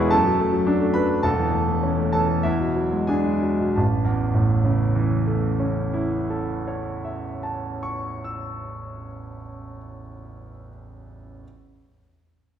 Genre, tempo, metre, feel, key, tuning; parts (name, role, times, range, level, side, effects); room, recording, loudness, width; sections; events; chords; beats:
classical, virtuoso piano study; 86-111 BPM; 4/4; rubato; A major; A4 = 439 Hz
clear concert grand piano; solo; 0.0-11.5 s; E1 to E6; -21 LUFS; equal
wet recital hall reverb, RT60 1.6 s; heard from further back in the room; -20 LUFS; side -9 dB against mid
0.0-3.8 A section; 3.8-9.2 B section
slowing down 0.0-3.8
0.1 D/F#; 1.2 A/E; 2.4 E9; 3.8 A
0.11 0.67 | 1.24 1.83 2.45 3.09 | 3.77 4.45 5.13 5.80 | 6.50 7.18 7.86 8.55